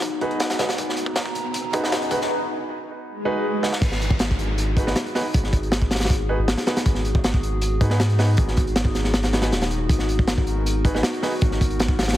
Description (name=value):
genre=drum and bass, jungle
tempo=158 BPM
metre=4/4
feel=straight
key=G# minor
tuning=A4 = 440 Hz
part: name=warbly tape-like pad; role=sustained chords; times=0.0-12.2 s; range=B3 to A#5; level=-29 LUFS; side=left 1 dB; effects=chorus, built-in reverb
part: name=soft dub sub bass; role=bass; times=0.0-12.2 s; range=D#1 to G#2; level=-24 LUFS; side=equal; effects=tube saturation, high-pass filter
part: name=crunchy breakbeat drum kit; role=drums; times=0.0-12.2 s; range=crash cymbal, hi-hat, kick drum, snare drum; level=-22 LUFS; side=equal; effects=high-pass filter on kick, high-pass filter on hats, high-pass filter on cymbals, high-pass filter on snare, high-pass filter on room
part: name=dusty soul sampler-style drum kit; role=drums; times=0.0-2.2 s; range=hi-hat, snare drum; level=-37 LUFS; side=left 2 dB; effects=none
part: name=riser, swell and downlifter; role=sound effects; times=0.1-6.9 s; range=none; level=-32 LUFS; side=equal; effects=none
part: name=clear grand piano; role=stabs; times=0.2-11.3 s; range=D#4 to B4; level=-28 LUFS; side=right 2 dB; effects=vintage 12-bit sampler grit, low-pass filter, dub echo
room=light reverb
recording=heavily compressed radio sound, multiband compression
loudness=-19 LUFS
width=side -13 dB against mid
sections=0.0-3.8 A section; 3.8-12.2 B section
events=build-up 0.0-3.8; riser 0.1-2.3; swell 3.2-3.8; drum fill 3.6; drop 3.8-12.2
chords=0.0 G#m7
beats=0.03 0.40 | 0.78 1.16 1.54 1.92 | 2.30 2.68 3.06 3.44 | 3.82 4.20 4.58 4.96 | 5.34 5.72 6.10 6.48 | 6.86 7.24 7.62 8.00 | 8.38 8.76 9.14 9.52 | 9.90 10.28 10.66 11.04 | 11.42 11.80